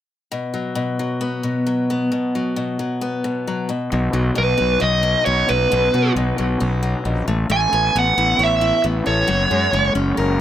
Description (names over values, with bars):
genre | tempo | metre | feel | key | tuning
rock | 134 BPM | 4/4 | straight | unclear | A4 = 442 Hz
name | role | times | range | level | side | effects
picked steel-string acoustic guitar | arpeggios | 0.3-10.4 s | B2 to C#5 | -21 LUFS | left 2 dB | none
fuzz fingered electric bass | bass | 3.9-10.4 s | F#1 to B2 | -20 LUFS | equal | overdrive
dark smooth lead guitar | melody | 4.4-9.9 s | B4 to G#5 | -18 LUFS | right 2 dB | overdrive, analog delay
room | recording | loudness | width
small room ambience | none | -17 LUFS | side -11 dB against mid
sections
0.3-3.9 A section; 3.9-10.4 B section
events
none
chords
0.3 B5; 3.7 N.C.; 3.9 Bsus2; 7.3 Aadd9; 9.3 F#add9